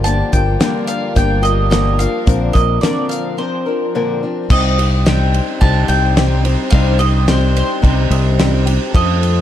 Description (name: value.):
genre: folk rock and heartland rock.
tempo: 108 BPM.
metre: 4/4.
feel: straight.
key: C dorian.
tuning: A4 = 440 Hz.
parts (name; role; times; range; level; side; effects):
bowl-back mandolin; melody; 0.0-9.4 s; C5 to A5; -21 LUFS; right 2 dB; digital delay.
picked acoustic archtop guitar; accompaniment; 0.0-9.4 s; G2 to Bb4; -20 LUFS; left 5 dB; none.
warm chamber string section; sustained chords; 0.0-9.4 s; F3 to C5; -25 LUFS; right 1 dB; none.
fingered electric bass; bass; 0.0-9.4 s; G1 to F2; -15 LUFS; equal; none.
damped 70s drum kit; drums; 0.1-9.4 s; crash cymbal, hi-hat, kick drum, ride cymbal, snare drum; -17 LUFS; equal; none.
room: light reverb.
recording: dark, warm production.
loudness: -12 LUFS.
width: side -11 dB against mid.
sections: 0.0-4.5 A section; 4.5-9.4 B section.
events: break 3.4-4.5.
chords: 0.0 Gm7; 2.3 Bbadd9; 4.5 Cm.